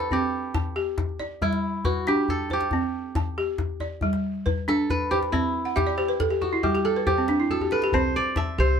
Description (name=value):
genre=west african traditional, West African string and xylophone music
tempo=92 BPM (dotted quarters)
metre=12/8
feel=straight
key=C lydian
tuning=A4 = 440 Hz
part: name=kora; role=melody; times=0.0-8.8 s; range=D4 to E5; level=-27 LUFS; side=equal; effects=none
part: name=balafon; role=arpeggios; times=0.0-8.8 s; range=G3 to A5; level=-25 LUFS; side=right 1 dB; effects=none
part: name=djembe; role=percussion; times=0.0-8.5 s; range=none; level=-29 LUFS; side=left 3 dB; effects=none
part: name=upright bass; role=bass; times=7.9-8.8 s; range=C2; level=-23 LUFS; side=right 1 dB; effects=none
room=moderate small room reverb, RT60 0.5 s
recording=band playing live in one room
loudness=-22 LUFS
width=side -7 dB against mid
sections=0.0-8.8 A section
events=kora solo 0.0-8.8; balafon fill 5.7-7.9; drum fill 7.5-7.9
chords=0.1 C5; 1.4 G; 2.7 C5; 4.0 G; 5.3 C; 6.6 G5; 7.9 C5